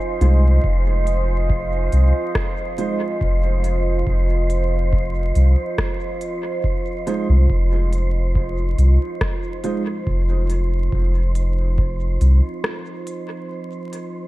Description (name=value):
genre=ambient dub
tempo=70 BPM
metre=4/4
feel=straight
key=F minor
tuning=A4 = 440 Hz
part: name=deep dark ambient pad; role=sustained chords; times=0.0-14.3 s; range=F4 to Ab5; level=-27 LUFS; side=right 2 dB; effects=chorus, built-in reverb
part: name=wind-like tuned noise texture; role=texture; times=0.0-14.3 s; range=C5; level=-33 LUFS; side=right 6 dB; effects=built-in reverb
part: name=dark upright piano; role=stabs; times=0.2-9.8 s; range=Ab3 to C5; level=-28 LUFS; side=right 3 dB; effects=dub echo
part: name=soft dub sub bass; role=bass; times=0.2-12.4 s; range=F1 to C2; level=-16 LUFS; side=equal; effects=none
part: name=organic electronic drum kit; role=drums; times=0.2-14.1 s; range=hi-hat, rim click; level=-28 LUFS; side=equal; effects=dub echo
part: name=electronic kick drum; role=drums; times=0.6-12.0 s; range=none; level=-24 LUFS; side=equal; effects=overdrive
room=little or no reverb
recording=vinyl crackle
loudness=-17 LUFS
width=side -17 dB against mid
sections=0.0-14.3 A section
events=filter sweep on upright piano 0.0-14.3; break 12.6-14.3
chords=0.0 Fm7